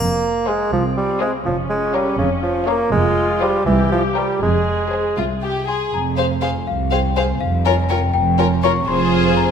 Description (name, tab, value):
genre	cinematic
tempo	81 BPM (dotted quarters)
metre	6/8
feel	straight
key	F minor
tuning	A4 = 440 Hz
part	clear bassoon	accompaniment	0.0-5.2 s	Db3 to Bb3	-19 LUFS	right 1 dB	none
part	dark studio double bass section	bass	0.0-9.5 s	F1 to C2	-23 LUFS	right 2 dB	none
part	warm studio cello section	bass	0.0-9.5 s	C2 to F2	-23 LUFS	right 3 dB	none
part	dark studio violin section	melody	0.5-9.5 s	C5 to Ab5	-24 LUFS	left 5 dB	none
part	warm studio violin section	second line	0.5-9.5 s	F4 to Db5	-24 LUFS	left 4 dB	none
part	warm studio viola section	accompaniment	0.7-9.5 s	C4 to Ab4	-26 LUFS	equal	none
part	worn celesta	melody	5.2-9.5 s	E5 to Db6	-23 LUFS	left 7 dB	none
room	moderate scoring stage reverb, RT60 1.8 s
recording	none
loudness	-16 LUFS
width	side -7 dB against mid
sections	0.0-5.9 A section; 5.9-9.5 A section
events	none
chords	0.0 Fm; 1.5 Bbm/F; 2.9 Fm; 3.7 C5; 4.4 Fm; 7.4 Bbm/F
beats	0.72 | 1.46 2.19 | 2.93 3.67 | 4.42 5.18 | 5.93 6.67 | 7.41 8.14 | 8.88